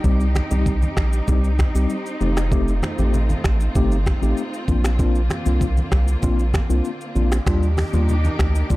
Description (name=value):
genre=afrobeats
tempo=97 BPM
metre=4/4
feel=straight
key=unclear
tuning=A4 = 439 Hz
part: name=mellow tine electric piano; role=accompaniment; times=0.0-8.8 s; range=G3 to G4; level=-25 LUFS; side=left 2 dB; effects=fast stereo tremolo
part: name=warm symphonic string section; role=sustained chords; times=0.0-8.8 s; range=D3 to G4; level=-30 LUFS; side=equal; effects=sidechain pumping
part: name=round analog bass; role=bass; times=0.0-8.8 s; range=F1 to Eb2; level=-19 LUFS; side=equal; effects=none
part: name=afro-pop drum kit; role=drums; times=0.0-8.8 s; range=finger snaps, hi-hat, kick drum, rim click, shaker, toms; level=-22 LUFS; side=equal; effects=none
part: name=congas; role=percussion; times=0.0-8.8 s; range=none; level=-30 LUFS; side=right 1 dB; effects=none
room=little or no reverb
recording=dark, warm production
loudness=-17 LUFS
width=side -19 dB against mid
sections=0.0-8.8 A section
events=none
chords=0.0 Cm; 2.2 F7; 4.7 Bbadd9; 7.5 Ebmaj7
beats=| 0.04 0.66 1.28 1.90 | 2.52 3.13 3.75 4.37 | 4.99 5.61 6.23 6.85 | 7.46 8.08 8.70